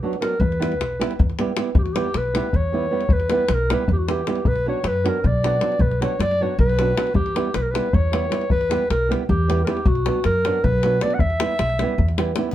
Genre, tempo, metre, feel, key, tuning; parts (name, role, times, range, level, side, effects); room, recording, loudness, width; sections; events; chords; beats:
balkan folk, Balkan wedding band; 311 BPM (eighths); 7/8; straight; E dorian sharp4; A4 = 440 Hz
mellow clarinet; melody; 0.0-12.2 s; F#4 to F#5; -23 LUFS; left 1 dB; plate reverb
flamenco guitar; accompaniment; 0.0-12.5 s; F#3 to G4; -25 LUFS; right 4 dB
davul; percussion; 0.1-12.4 s; -23 LUFS; left 2 dB
upright bass; bass; 0.4-12.3 s; B1 to F#2; -23 LUFS; equal
moderate studio reverb, RT60 0.6 s; heard from further back in the room; -18 LUFS; side -12 dB against mid
0.0-1.7 A section; 1.7-12.5 B section
0.4 Em; 4.5 Bm; 7.2 Em; 9.9 Bm; 11.2 Em
0.01 0.21 | 0.40 0.59 0.79 0.98 1.17 1.36 1.56 | 1.75 1.94 2.13 2.33 2.52 2.71 2.91 | 3.10 3.29 3.48 3.68 3.87 4.06 4.26 | 4.45 4.64 4.84 5.03 5.22 5.42 5.61 | 5.80 6.00 6.19 6.38 6.57 6.77 6.96 | 7.15 7.35 7.54 7.73 7.92 8.12 8.31 | 8.50 8.70 8.89 9.08 9.27 9.47 9.66 | 9.85 10.04 10.24 10.43 10.62 10.82 11.01 | 11.20 11.39 11.59 11.78 11.97 12.16 12.36